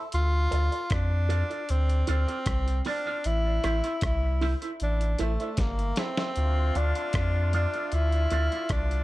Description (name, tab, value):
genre	roots reggae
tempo	77 BPM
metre	4/4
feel	straight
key	D minor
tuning	A4 = 440 Hz
part	electric guitar with an envelope filter	accompaniment	0.0-8.6 s	E4 to F5	-36 LUFS	right 4 dB	phaser, tape echo
part	breathy tenor saxophone	melody	0.1-9.0 s	A3 to F4	-31 LUFS	equal	tape echo
part	warm sub bass	bass	0.1-9.0 s	G1 to F2	-25 LUFS	equal	none
part	dusty soul sampler-style drum kit	drums	0.1-9.0 s	hi-hat, kick drum, rim click, snare drum	-30 LUFS	equal	none
part	clear horn section	second line	6.4-9.0 s	D3 to F4	-36 LUFS	left 6 dB	tape echo
room	little or no reverb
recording	dark, warm production, faint mains hum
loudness	-24 LUFS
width	side -17 dB against mid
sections	0.0-6.4 A section; 6.4-9.0 B section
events	drum fill 5.6-6.4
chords	0.1 Dm; 3.2 Am; 6.4 Dm